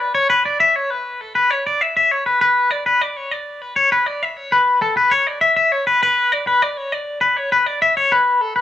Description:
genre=rock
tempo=67 BPM (dotted quarters)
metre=6/8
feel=straight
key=unclear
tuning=A4 = 439 Hz
part: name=twangy electric guitar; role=solo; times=0.0-8.6 s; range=A4 to E5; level=-15 LUFS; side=left 2 dB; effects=tremolo, cassette tape
room=light reverb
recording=home recording on cassette, small room ambience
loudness=-15 LUFS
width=side -11 dB against mid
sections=0.0-8.6 A section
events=none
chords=none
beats=| 0.61 1.51 | 2.41 3.31 | 4.21 5.11 | 6.01 6.92 | 7.82

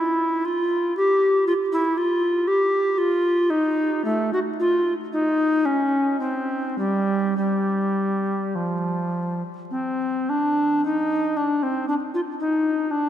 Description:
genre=classical, baroque-style fantasia for unaccompanied recorder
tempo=50-60 BPM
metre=3/4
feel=rubato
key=unclear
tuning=A4 = 440 Hz
part: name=bass recorder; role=solo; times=0.0-13.1 s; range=F3 to G4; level=-20 LUFS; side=equal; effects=none
room=wet cathedral reverb, RT60 4.8 s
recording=minimal, uncompressed stereo recording, vinyl crackle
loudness=-20 LUFS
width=side -10 dB against mid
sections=0.0-10.9 A section; 10.9-13.1 A section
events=none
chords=none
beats=| 0.97 1.98 2.99 | 4.06 5.13 6.22 | 7.38 8.57 9.71 | 10.86 11.89 12.91

